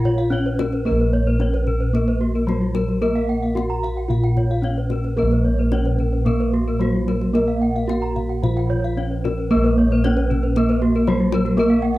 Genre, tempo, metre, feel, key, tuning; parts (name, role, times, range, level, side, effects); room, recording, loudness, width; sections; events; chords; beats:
Balinese gamelan; 111 BPM; 4/4; straight; Bb pelog; A4 = 440 Hz
gamelan-type bronze metallophone; melody; 0.0-12.0 s; Gb3 to Gb4; -21 LUFS; equal; cassette tape
gamelan-type bronze metallophone; arpeggios; 0.0-11.9 s; F4 to Bb5; -31 LUFS; right 4 dB; cassette tape
gamelan-type bossed gongs; bass; 0.0-12.0 s; Bb1 to Bb4; -21 LUFS; equal
kendang; percussion; 0.0-12.0 s; -30 LUFS; left 5 dB
gamelan-type bronze metallophone; arpeggios; 0.2-11.7 s; Gb4 to Gb5; -29 LUFS; left 4 dB; cassette tape
gamelan-type bronze metallophone; accompaniment; 5.2-12.0 s; F3 to Bb3; -27 LUFS; right 5 dB; cassette tape
wet booth ambience, RT60 0.2 s; home recording on cassette; -17 LUFS; side -17 dB against mid
0.0-12.0 A section
0.32 | 0.85 1.40 1.94 2.48 | 3.02 3.56 4.10 4.64 | 5.18 5.72 6.26 6.80 | 7.34 7.88 8.42 8.96 | 9.50 10.04 10.56 11.07 | 11.57